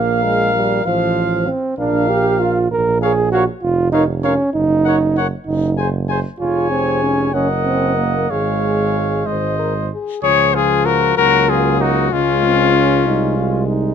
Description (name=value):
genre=classical, brass quintet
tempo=64 BPM (dotted quarters)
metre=6/8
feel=rubato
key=Db major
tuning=A4 = 440 Hz
part: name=warm cornet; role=melody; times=0.0-13.7 s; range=F4 to Ab5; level=-18 LUFS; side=left 11 dB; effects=none
part: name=clear trumpet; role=second line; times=0.0-13.6 s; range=Db4 to F5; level=-23 LUFS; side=right 8 dB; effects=none
part: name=clear French horn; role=accompaniment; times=0.0-13.9 s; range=F3 to C5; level=-24 LUFS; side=left 6 dB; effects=none
part: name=mellow trombone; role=accompaniment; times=0.0-13.9 s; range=F3 to Bb4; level=-19 LUFS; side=right 3 dB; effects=none
part: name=warm tuba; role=bass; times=0.0-13.9 s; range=F1 to Db2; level=-20 LUFS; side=right 4 dB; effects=none
room=light reverb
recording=close, detailed microphones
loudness=-14 LUFS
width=side -8 dB against mid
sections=0.0-10.2 A section; 10.2-13.9 B section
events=none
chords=0.0 Bb5; 0.9 F/A; 1.8 Bb5; 2.7 Bbm; 4.5 Ebm7/Gb; 5.5 Ab7/Gb; 6.4 Db/F; 7.3 Ebm/Gb; 8.3 Db/Ab; 9.3 Ab; 10.2 Db; 11.2 Gbmaj13/Db; 12.1 Db; 13.1 Ab/C